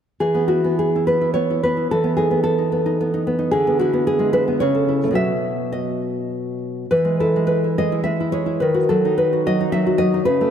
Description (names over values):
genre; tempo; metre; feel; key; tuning
romantic piece for solo classical guitar; 102-116 BPM; 3/4; rubato; E major; A4 = 440 Hz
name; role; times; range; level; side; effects
nylon-string guitar; solo; 0.2-10.5 s; B2 to E5; -17 LUFS; equal; none
room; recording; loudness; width
wet concert hall reverb, RT60 2.5 s; none; -17 LUFS; side -8 dB against mid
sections
0.2-10.5 A section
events
none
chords
0.2 E5; 1.9 B7/E; 3.5 E7/D; 4.6 A/C#; 5.2 B; 6.9 E; 8.6 D#dim